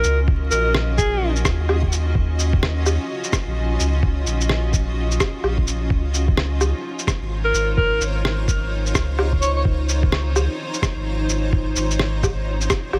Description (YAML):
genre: future garage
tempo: 128 BPM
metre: 4/4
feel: swing 62% on 16ths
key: unclear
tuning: A4 = 440 Hz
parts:
  - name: warm alto saxophone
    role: melody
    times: 0.0-1.4, 7.4-9.6 s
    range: Ab4 to Db5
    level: -26 LUFS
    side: equal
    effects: vintage 12-bit sampler grit, tape echo
  - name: granular cloud pad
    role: sustained chords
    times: 0.0-13.0 s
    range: Db4 to Eb5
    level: -30 LUFS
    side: equal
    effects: built-in reverb, sidechain pumping
  - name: warm sub bass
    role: bass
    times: 0.0-13.0 s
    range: Ab1 to Eb2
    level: -24 LUFS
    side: equal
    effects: tube saturation, sidechain pumping
  - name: electronic shaker, rim click and woodblock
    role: drums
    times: 0.0-13.0 s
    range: none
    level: -26 LUFS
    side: equal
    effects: small room ambience
  - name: electronic kick drum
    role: drums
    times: 0.3-12.8 s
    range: none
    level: -24 LUFS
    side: equal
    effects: small room ambience
room: light reverb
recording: vinyl crackle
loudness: -21 LUFS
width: mono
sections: 0.0-13.0 A section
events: none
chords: 0.0 Ebm9; 5.9 Dbmaj9